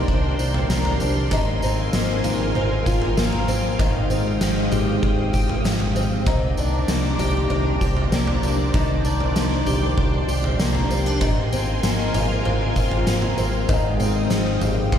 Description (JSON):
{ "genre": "dream pop", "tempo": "97 BPM", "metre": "4/4", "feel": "straight", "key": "C minor", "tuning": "A4 = 439 Hz", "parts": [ { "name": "string machine, cellos", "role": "sustained chords", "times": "0.0-15.0 s", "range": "Ab3 to Eb6", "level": "-27 LUFS", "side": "right 1 dB", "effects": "ensemble chorus" }, { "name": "picked twelve-string acoustic guitar", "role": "arpeggios", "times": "0.0-15.0 s", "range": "Eb3 to G4", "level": "-24 LUFS", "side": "left 3 dB", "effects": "wide subtle chorus, ping-pong delay" }, { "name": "vintage muted fingered electric bass", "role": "bass", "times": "0.0-15.0 s", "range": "Ab1 to C2", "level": "-24 LUFS", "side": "equal", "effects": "none" }, { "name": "oversized low-tuned drum kit", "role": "drums", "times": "0.1-15.0 s", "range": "kick drum, snare drum, tambourine, toms", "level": "-23 LUFS", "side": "right 1 dB", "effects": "none" } ], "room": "moderate scoring stage reverb, RT60 1.9 s, studio reverb", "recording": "played on a big sound system in a bare room, stone room reverb", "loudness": "-18 LUFS", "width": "side -9 dB against mid", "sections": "0.0-15.0 A section", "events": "none", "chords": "0.0 Cm9; 1.3 Ab69; 3.8 Fm9/Ab; 6.3 Cm9; 11.2 Ab69; 13.7 Fm9/Ab", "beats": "0.08 0.70 | 1.32 1.94 2.56 3.17 | 3.79 4.41 5.03 5.65 | 6.27 6.89 7.50 8.12 | 8.74 9.36 9.98 10.60 | 11.22 11.84 12.45 13.07 | 13.69 14.31 14.93" }